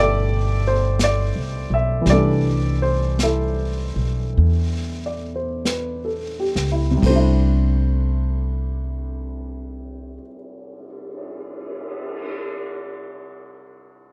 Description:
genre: jazz ballad.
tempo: 43-58 BPM.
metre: 4/4.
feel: swing 66% on 8ths.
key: C major.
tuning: A4 = 440 Hz.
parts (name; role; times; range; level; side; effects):
warm baby grand piano; accompaniment; 0.0-14.1 s; B2 to A5; -25 LUFS; equal; none.
upright bass; bass; 0.0-10.2 s; G1 to E2; -23 LUFS; equal; none.
vintage brush drum kit; drums; 1.0-12.3 s; brushed snare drum, crash cymbal, cymbal swell, hi-hat, kick drum, snare drum; -33 LUFS; equal; none.
room: light reverb.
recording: none.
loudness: -21 LUFS.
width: mono.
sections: 0.0-7.0 A section; 7.0-12.6 B section.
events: slowing down 0.0-7.0.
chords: 0.0 C69.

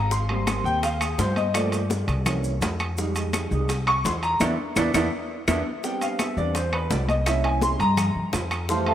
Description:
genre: Afro-Cuban jazz.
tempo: 168 BPM.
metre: 4/4.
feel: straight.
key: unclear.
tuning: A4 = 439 Hz.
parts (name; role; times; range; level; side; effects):
warm baby grand piano; accompaniment; 0.0-8.9 s; E3 to Db6; -25 LUFS; right 1 dB; lush chorus.
upright bass; bass; 0.0-8.9 s; Ab1 to G2; -26 LUFS; equal; none.
bongos; percussion; 0.1-8.9 s; none; -34 LUFS; left 6 dB; none.
congas; percussion; 0.1-8.9 s; none; -33 LUFS; left 2 dB; none.
maracas; percussion; 0.1-8.9 s; none; -38 LUFS; right 3 dB; none.
timbales; percussion; 0.3-8.9 s; none; -31 LUFS; right 3 dB; none.
claves; percussion; 0.5-8.7 s; none; -33 LUFS; left 4 dB; none.
room: moderate plate reverb, RT60 2.9 s.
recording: dreamy mix soaked in reverb.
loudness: -22 LUFS.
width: side -10 dB against mid.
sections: 0.0-5.8 A section; 5.8-8.9 A section.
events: grand piano solo 0.0-8.9; drum fill 4.4-5.8; band accent 4.4-5.8.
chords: 0.1 Abmaj9; 1.5 Gm9; 2.3 C7b9; 3.0 Fm9; 4.4 E5; 5.8 Cmaj9; 7.3 C7b9.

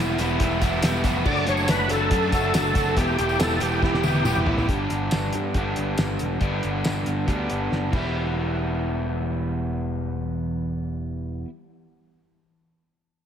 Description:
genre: classic rock.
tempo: 139 BPM.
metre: 4/4.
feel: straight.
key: E minor.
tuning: A4 = 440 Hz.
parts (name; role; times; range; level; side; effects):
crunchy overdriven guitar; riff; 0.0-11.5 s; G2 to G4; -26 LUFS; equal; slapback echo.
overdriven electric guitar; riff; 0.0-4.7 s; E3 to G4; -29 LUFS; equal; spring reverb.
picked electric bass; bass; 0.0-11.4 s; E1 to G2; -28 LUFS; equal; none.
cloth-damped thuddy drum kit; drums; 0.2-8.0 s; crash cymbal, hi-hat, kick drum, snare drum, tambourine, toms; -26 LUFS; equal; none.
tambourine; percussion; 0.2-4.6 s; none; -41 LUFS; left 6 dB; none.
overdriven tonewheel organ; melody; 1.3-4.4 s; G4 to D5; -25 LUFS; equal; slow rotary speaker, chorus vibrato, slapback echo, tape echo.
room: moderate concert hall reverb, RT60 1.9 s, studio reverb.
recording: big arena sound.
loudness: -21 LUFS.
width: side -8 dB against mid.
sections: 0.0-4.7 A section; 4.7-8.1 B section; 8.1-11.6 C section.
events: drum fill 3.8-4.7, 7.7-8.1.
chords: 0.0 Em; 1.3 D/F#; 3.0 Em; 4.7 G; 7.9 Em.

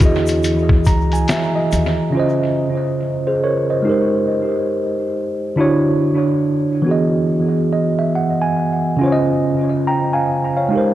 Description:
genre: lo-fi hip hop.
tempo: 70 BPM.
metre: 4/4.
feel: swing 61% on 16ths.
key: unclear.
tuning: A4 = 440 Hz.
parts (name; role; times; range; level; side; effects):
mellow tine electric piano; accompaniment; 0.0-10.9 s; Db3 to Bb5; -15 LUFS; right 1 dB; medium stereo tremolo, low-pass filter, tape echo.
upright bass; bass; 0.0-1.9 s; Db2 to E2; -20 LUFS; left 1 dB; none.
lo-fi sampler-style drum kit; drums; 0.0-2.0 s; hi-hat, kick drum, snare drum; -17 LUFS; equal; tape echo.
tube shaker; percussion; 0.0-2.0 s; none; -39 LUFS; left 6 dB; tape echo.
room: moderate echo chamber reverb, RT60 2.5 s.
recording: echo-heavy mix, cassette tape.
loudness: -15 LUFS.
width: side -13 dB against mid.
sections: 0.0-2.2 A section; 2.2-10.9 B section.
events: tine electric piano fill 0.4-2.2, 7.3-9.0.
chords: 0.0 Emaj9; 2.2 Dbmaj9; 3.9 Abmaj9; 5.6 Dmaj9; 6.9 Emaj9; 9.0 Dbmaj9.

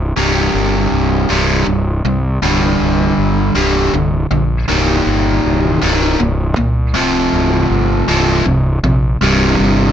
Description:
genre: post-rock.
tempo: 53 BPM (dotted quarters).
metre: 6/8.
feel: straight.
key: C minor.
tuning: A4 = 440 Hz.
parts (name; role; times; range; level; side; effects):
fuzz fingered electric bass; bass; 0.0-9.9 s; C1 to C2; -16 LUFS; equal; overdrive.
biting overdriven guitar; riff; 0.2-9.9 s; C2 to G3; -14 LUFS; equal; none.
room: light reverb, digital ambience.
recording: dark, warm production.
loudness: -12 LUFS.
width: side -9 dB against mid.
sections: 0.2-9.9 A section.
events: build-up 0.2-9.9.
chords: 0.2 C5; 2.4 Gm/C; 4.7 Eb/C; 7.0 F5/C; 9.2 C5.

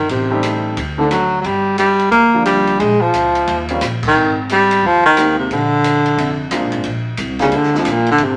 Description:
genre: jazz, small-group swing and bop.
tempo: 178 BPM.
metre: 4/4.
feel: swing 63% on 8ths.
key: unclear.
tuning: A4 = 441 Hz.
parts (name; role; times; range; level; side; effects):
breathy baritone saxophone; melody; 0.0-8.4 s; F2 to Bb3; -15 LUFS; equal; none.
upright bass; bass; 0.0-8.4 s; F1 to Eb2; -27 LUFS; equal; none.
open jazz drum kit; drums; 0.1-8.3 s; crash cymbal, hi-hat, kick drum, ride cymbal, rim click, snare drum; -28 LUFS; equal; none.
warm concert grand piano; accompaniment; 0.3-7.9 s; Eb3 to A4; -23 LUFS; equal; none.
room: wet studio reverb, RT60 0.7 s.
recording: none.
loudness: -15 LUFS.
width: mono.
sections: 0.0-6.8 A section; 6.8-8.4 B section.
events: band accent 4.0; baritone saxophone solo 6.8-8.4.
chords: 0.1 Am7b5; 0.8 D5; 1.4 Gm7; 2.8 Bbm; 3.5 Eb13; 4.1 Abmaj9; 5.5 Bb7; 6.8 Bb6.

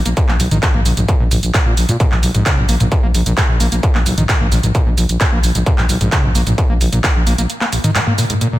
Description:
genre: driving peak-time techno.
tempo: 131 BPM.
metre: 4/4.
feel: straight.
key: Bb phrygian.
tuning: A4 = 439 Hz.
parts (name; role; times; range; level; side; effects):
growling FM bass; bass; 0.0-7.5 s; Bb1 to Bb2; -17 LUFS; equal; sidechain pumping.
screaming distorted acid line; riff; 0.1-8.6 s; Bb1 to Bb3; -20 LUFS; equal; distortion, chorus, sidechain pumping, digital delay.
techno drum kit; drums; 0.1-8.5 s; handclaps, hi-hat, shaker, toms; -18 LUFS; equal; overdrive, small room ambience, sidechain pumping on hats, sidechain pumping on perc, sidechain pumping on toms.
electronic kick drum; drums; 0.2-7.1 s; none; -15 LUFS; equal; distortion, overdrive, small room ambience.
room: light reverb.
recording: dense, heavily limited modern master.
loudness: -12 LUFS.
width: side -16 dB against mid.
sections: 0.0-8.6 A section.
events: none.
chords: none.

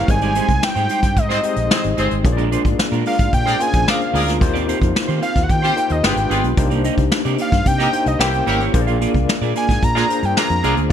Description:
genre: polished 1980s jazz-funk pop.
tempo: 111 BPM.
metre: 4/4.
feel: straight.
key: unclear.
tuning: A4 = 441 Hz.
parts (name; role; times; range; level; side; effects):
fat analog lead; melody; 0.0-10.7 s; Eb5 to Bb5; -21 LUFS; equal; none.
overdriven tine electric piano; accompaniment; 0.0-10.9 s; G3 to D5; -23 LUFS; left 5 dB; fast tremolo, wide subtle chorus.
clean electric guitar; riff; 0.0-10.8 s; Ab3 to F5; -25 LUFS; right 9 dB; wide subtle chorus.
vintage muted fingered electric bass; bass; 0.1-10.9 s; G1 to Eb3; -22 LUFS; equal; none.
vintage brush drum kit; drums; 0.1-10.9 s; hi-hat, kick drum, snare drum; -20 LUFS; equal; none.
warm horn section; second line; 1.3-10.8 s; C4 to D5; -25 LUFS; left 1 dB; none.
room: light reverb, small room ambience.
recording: bright 1980s-style digital production.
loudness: -15 LUFS.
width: side -9 dB against mid.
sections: 0.0-10.9 A section.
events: none.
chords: 0.1 Abmaj7; 2.2 Bb7; 4.4 Eb69; 6.0 G7b9; 6.6 Cm9; 8.2 C7b9; 8.7 Bb7.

